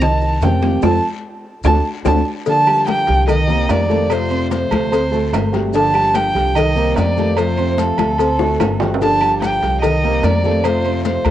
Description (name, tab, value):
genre	latin, Cuban son and guajira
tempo	147 BPM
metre	4/4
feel	straight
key	G minor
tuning	A4 = 439 Hz
part	warm violin	melody	0.0-11.3 s	A4 to A5	-18 LUFS	right 1 dB	none
part	fingerpicked plugged-in swing-style acoustic guitar	accompaniment	0.0-11.3 s	C3 to G4	-24 LUFS	left 7 dB	cassette tape
part	dark concert grand piano	arpeggios	0.0-11.3 s	C3 to C6	-21 LUFS	right 5 dB	cassette tape
part	upright bass	bass	0.0-11.3 s	G1 to F2	-20 LUFS	equal	none
part	bongos and cowbell	percussion	0.0-11.3 s	none	-24 LUFS	left 7 dB	none
part	claves	percussion	0.0-11.3 s	none	-36 LUFS	left 8 dB	none
part	congas	percussion	0.0-11.3 s	none	-25 LUFS	left 8 dB	none
part	guiro	percussion	0.0-11.3 s	none	-41 LUFS	left 8 dB	none
part	maracas	percussion	0.0-11.3 s	none	-42 LUFS	left 9 dB	none
part	timbales and agogo bells	percussion	0.0-11.3 s	none	-26 LUFS	right 7 dB	none
room	light reverb, studio ambience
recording	home recording on cassette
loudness	-14 LUFS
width	side -12 dB against mid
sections	0.0-2.5 A section; 2.5-11.3 B section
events	violin solo 0.0-2.5; band accent 0.8-2.5; drum fill 1.9-2.5, 8.4-9.0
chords	0.0 Cm7; 0.8 F; 1.7 D7; 2.5 Gm7; 3.3 Cm7; 4.1 F; 4.9 D7; 5.7 Gm7; 6.6 Cm7; 7.4 F; 8.2 D7; 9.0 Gm7; 9.8 Cm7; 10.6 F